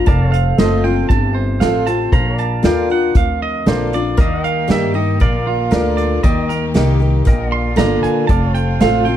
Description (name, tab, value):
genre	honky-tonk and classic country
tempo	117 BPM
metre	4/4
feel	straight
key	Bb major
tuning	A4 = 445 Hz
part	twangy electric guitar	second line	0.0-9.2 s	F4 to C6	-22 LUFS	right 7 dB	tape echo
part	bright grand piano	accompaniment	0.0-9.2 s	F4 to Eb5	-25 LUFS	right 3 dB	none
part	picked steel-string acoustic guitar	accompaniment	0.0-9.2 s	F2 to G4	-19 LUFS	left 2 dB	none
part	pedal steel guitar	sustained chords	0.0-9.2 s	A4 to G5	-27 LUFS	left 1 dB	none
part	upright bass	bass	0.0-9.2 s	F1 to G2	-18 LUFS	equal	none
part	unplugged drum kit	drums	0.1-8.9 s	hi-hat, kick drum, snare drum	-16 LUFS	equal	none
part	bright studio string section	sustained chords	4.2-9.2 s	C3 to G4	-28 LUFS	equal	none
room	light reverb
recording	dark, warm production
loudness	-13 LUFS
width	side -11 dB against mid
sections	0.0-9.2 A section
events	clean electric guitar solo 0.0-9.2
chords	0.1 F; 2.1 Bb; 4.2 Eb; 5.2 Bb; 6.2 Eb; 7.3 Bb; 8.3 F